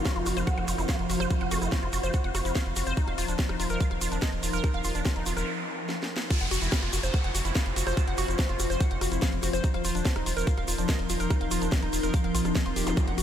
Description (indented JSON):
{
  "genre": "psychedelic trance",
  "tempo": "144 BPM",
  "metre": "4/4",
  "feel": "straight",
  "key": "unclear",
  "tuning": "A4 = 440 Hz",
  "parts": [
    { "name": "vowel-sweep wobble bass", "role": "second line", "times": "0.0-1.7 s", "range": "A3 to C4", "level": "-48 LUFS", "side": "left 2 dB", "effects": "none" },
    { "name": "swarming drone", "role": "sustained chords", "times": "0.0-13.2 s", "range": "F3 to C4", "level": "-34 LUFS", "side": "left 1 dB", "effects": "built-in reverb, sidechain pumping" },
    { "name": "woody wave-folded pluck", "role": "riff", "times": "0.0-13.2 s", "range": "D4 to Gb5", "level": "-33 LUFS", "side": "moving between left 5 dB and right 5 dB", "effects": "chorus, auto-pan, vintage 12-bit sampler grit, sidechain pumping, analog delay" },
    { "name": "ethereal airy pad", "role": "texture", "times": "0.0-13.2 s", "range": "Eb4 to F5", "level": "-36 LUFS", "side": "left 2 dB", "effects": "ensemble chorus, built-in reverb, sidechain pumping" },
    { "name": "electronic kick drum", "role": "drums", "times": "0.1-13.1 s", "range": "none", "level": "-26 LUFS", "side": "equal", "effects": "none" },
    { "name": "garage drum kit", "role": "drums", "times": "0.1-13.2 s", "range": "crash cymbal, hi-hat, rim click, snare drum", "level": "-35 LUFS", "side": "left 1 dB", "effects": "none" },
    { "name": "egg shaker", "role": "percussion", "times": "0.1-13.2 s", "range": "none", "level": "-38 LUFS", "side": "right 3 dB", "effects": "none" },
    { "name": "round analog bass", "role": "bass", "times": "0.2-13.2 s", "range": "Eb1 to Bb1", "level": "-31 LUFS", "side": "equal", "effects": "none" },
    { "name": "noise sweep, downlifter and zap", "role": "sound effects", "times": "4.9-9.6, 12.9-13.0 s", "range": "none", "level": "-37 LUFS", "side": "right 1 dB", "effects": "none" }
  ],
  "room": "light reverb",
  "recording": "none",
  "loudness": "-25 LUFS",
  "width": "side -10 dB against mid",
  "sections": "0.0-6.3 A section; 6.3-13.2 B section",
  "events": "noise sweep 4.9-6.3; break 5.5-6.3; drum fill 5.9-6.3; band accent 6.2; drop 6.3-13.2",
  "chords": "0.0 F5; 3.0 Eb5; 6.3 F5; 9.6 Eb5",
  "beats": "0.06 0.47 0.89 | 1.30 1.72 2.14 2.56 | 2.97 3.39 3.81 4.22 | 4.64 5.05 5.47 5.89 | 6.30 6.72 7.14 7.55 | 7.97 8.39 8.80 9.22 | 9.64 10.05 10.47 10.89 | 11.30 11.72 12.14 12.55 | 12.97"
}